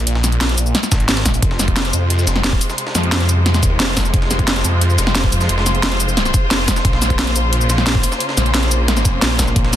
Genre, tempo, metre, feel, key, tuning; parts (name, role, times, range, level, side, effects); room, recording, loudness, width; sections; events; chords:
dark technical drum and bass; 177 BPM; 4/4; straight; F minor; A4 = 440 Hz
phased detuned saw bass; bass; 0.0-9.8 s; F1 to F2; -18 LUFS; equal; phaser
breakbeat sampler-style drum kit; drums; 0.1-9.8 s; hi-hat, snare drum; -28 LUFS; left 1 dB
drum and bass drum kit; drums; 0.1-9.8 s; hi-hat, shaker, snare drum; -18 LUFS; equal; overdrive
electronic kick drum; drums; 0.9-9.6 s; -18 LUFS; equal; overdrive
clear studio string section; sustained chords; 1.4-9.8 s; C3 to C5; -22 LUFS; left 1 dB; sidechain pumping
digital ambience; dense, heavily limited modern master; -14 LUFS; side -11 dB against mid
0.0-9.8 A section
0.0 Absus2; 1.4 Fm; 6.8 Bbmadd9